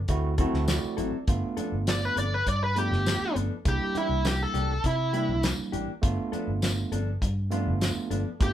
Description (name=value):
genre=straight-eighth soul blues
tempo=101 BPM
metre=4/4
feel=straight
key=G mixolydian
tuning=A4 = 437 Hz
part: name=vintage muted fingered electric bass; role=bass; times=0.0-8.5 s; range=G1 to C3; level=-29 LUFS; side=equal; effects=none
part: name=barky tine electric piano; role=accompaniment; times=0.1-8.5 s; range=G3 to A5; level=-32 LUFS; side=right 5 dB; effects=overdrive
part: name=warm soul drum kit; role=drums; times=0.1-8.5 s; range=hi-hat, kick drum, snare drum, tambourine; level=-28 LUFS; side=equal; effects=none
part: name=mellow electric guitar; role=stabs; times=0.4-8.3 s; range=E3 to A4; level=-34 LUFS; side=left 5 dB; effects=none
part: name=smooth overdriven lead guitar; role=melody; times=1.9-8.5 s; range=E4 to D5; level=-28 LUFS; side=equal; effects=none
room=light reverb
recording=band playing live in one room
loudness=-25 LUFS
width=side -11 dB against mid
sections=0.0-1.3 A section; 1.3-8.5 A section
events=tine electric piano fill 0.1-1.3; lead electric guitar solo 1.3-8.5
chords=0.1 D9; 1.3 G9; 3.7 C9; 6.0 G9